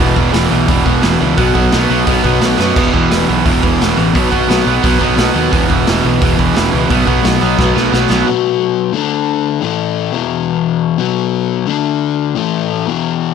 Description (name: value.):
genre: punk rock.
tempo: 175 BPM.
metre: 4/4.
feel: straight.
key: unclear.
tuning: A4 = 440 Hz.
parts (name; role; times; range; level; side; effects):
cranked stack guitar; riff; 0.0-8.3 s; E2 to B3; -14 LUFS; right 13 dB; overdrive.
overdriven semi-hollow guitar; riff; 0.0-13.3 s; E2 to D4; -15 LUFS; left 11 dB; none.
fuzz picked electric bass; bass; 0.0-8.2 s; E1 to F#2; -18 LUFS; right 1 dB; overdrive.
raw garage drum kit; drums; 0.2-8.2 s; crash cymbal, hi-hat, kick drum, snare drum; -17 LUFS; right 1 dB; none.
room: light reverb.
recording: none.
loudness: -11 LUFS.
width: side -6 dB against mid.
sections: 0.0-8.3 A section; 8.3-13.3 B section.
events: drum fill 2.6, 7.6-8.3.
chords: 0.0 E5; 1.4 B5; 2.8 E5; 4.2 B5; 5.5 E5; 6.9 B5; 9.0 D5; 9.6 A5; 10.1 E5; 11.0 B5; 11.7 D5; 12.4 A5.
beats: 0.34 0.69 1.04 | 1.38 1.73 2.08 2.42 | 2.77 3.12 3.46 3.81 | 4.15 4.50 4.84 5.19 | 5.53 5.87 6.22 6.56 | 6.90 7.24 7.59 7.93 | 8.27 8.61 8.95 9.29 | 9.63 9.97 10.31 10.66 | 11.00 11.34 11.68 12.02 | 12.36 12.70 13.04.